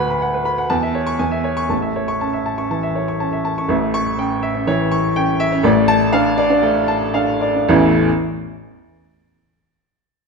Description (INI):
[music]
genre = classical, virtuoso piano study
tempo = 120 BPM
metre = 4/4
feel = uneven beats, rubato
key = A major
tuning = A4 = 438 Hz
[part]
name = warm baby grand piano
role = solo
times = 0.0-8.1 s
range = A1 to C#6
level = -15 LUFS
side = equal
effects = none
[sound]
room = wet recital hall reverb, RT60 1.4 s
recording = none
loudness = -15 LUFS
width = side -4 dB against mid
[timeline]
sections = 0.0-3.7 A section; 3.7-7.7 B section; 7.7-9.8 C section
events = slowing down 2.7-7.7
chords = 0.0 Bm/D; 0.7 A/E; 1.2 E6; 1.7 A; 3.7 A7; 5.6 Dm/A; 7.7 A